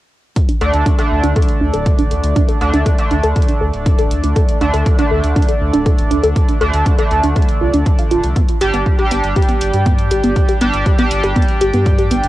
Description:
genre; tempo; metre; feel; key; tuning
melodic techno; 120 BPM; 4/4; straight; unclear; A4 = 437 Hz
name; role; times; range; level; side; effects
electronic hi-hat; drums; 0.4-12.3 s; none; -31 LUFS; equal; cassette tape
electronic kick drum; drums; 0.4-12.0 s; none; -15 LUFS; equal; cassette tape
woody wave-folded pluck; arpeggios; 0.5-12.1 s; B3 to F5; -19 LUFS; right 1 dB; chorus, sidechain pumping, cassette tape, tape echo
sync-sweep polysynth; stabs; 0.6-12.3 s; D3 to G4; -18 LUFS; right 1 dB; analog chorus, sidechain pumping, cassette tape, tape echo
round analog bass; bass; 0.6-12.3 s; D1 to G2; -18 LUFS; equal; sidechain pumping
room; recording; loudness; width
light reverb, digital ambience; home recording on cassette; -12 LUFS; side -15 dB against mid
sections
0.4-12.3 A section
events
filter sweep on synth pluck 0.4-12.3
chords
0.4 D5; 8.4 G5

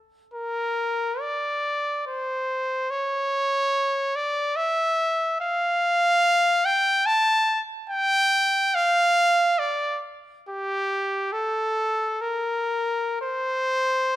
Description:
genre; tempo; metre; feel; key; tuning
classical, free, expressive piece for unaccompanied trumpet; 56-75 BPM; 3/4; rubato; unclear; A4 = 439 Hz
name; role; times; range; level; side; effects
clear trumpet; solo; 0.3-14.2 s; G4 to A5; -21 LUFS; equal; none
room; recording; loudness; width
moderate concert hall reverb, RT60 1.8 s; close, detailed microphones; -21 LUFS; side -14 dB against mid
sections
0.0-14.2 A section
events
none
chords
none

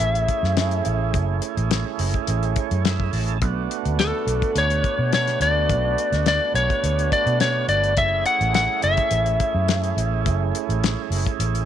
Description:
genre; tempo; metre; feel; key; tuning
straight-eighth soul blues; 105 BPM; 4/4; straight; F# minor; A4 = 441 Hz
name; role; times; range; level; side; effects
lightly driven lead guitar; melody; 0.0-10.5 s; A4 to F#5; -21 LUFS; left 3 dB; none
tonewheel organ; accompaniment; 0.0-11.7 s; A3 to A5; -27 LUFS; right 15 dB; overdrive, slow rotary speaker
vintage muted fingered electric bass; bass; 0.0-11.6 s; F#1 to B2; -23 LUFS; right 1 dB; none
cloth-damped thuddy drum kit; drums; 0.0-11.7 s; hi-hat, kick drum, snare drum; -25 LUFS; left 4 dB; none
room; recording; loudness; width
small room ambience; 1960s-style stereo; -19 LUFS; side -10 dB against mid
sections
0.0-11.7 A section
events
tonewheel organ fill 2.3-3.4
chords
0.0 F#m9; 3.4 Bm9; 8.0 F#m9

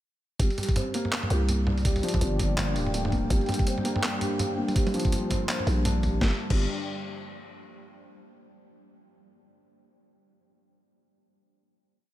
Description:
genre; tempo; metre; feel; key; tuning
half-time drum and bass; 165 BPM; 4/4; swing 59% on 16ths, half-time; G minor; A4 = 441 Hz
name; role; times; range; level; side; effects
dark analog pad; sustained chords; 1.6-7.6 s; G3 to G5; -35 LUFS; left 1 dB; chorus, sidechain pumping
felt-muted upright piano; arpeggios; 0.4-6.7 s; F3 to G4; -32 LUFS; equal; tape echo
growling 808-style bass; bass; 0.4-3.4, 5.7-6.7 s; D1 to C2; -26 LUFS; equal; none
boom bap sampler-style drum kit; drums; 0.4-6.6 s; crash cymbal, handclaps, hi-hat, snare drum, toms; -31 LUFS; equal; none
electronic kick drum; drums; 0.4-6.6 s; none; -26 LUFS; equal; none
room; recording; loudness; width
little or no reverb; none; -24 LUFS; side -14 dB against mid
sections
0.4-6.2 drop; 6.2-7.7 final chord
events
drop 0.4-6.2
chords
0.4 G5

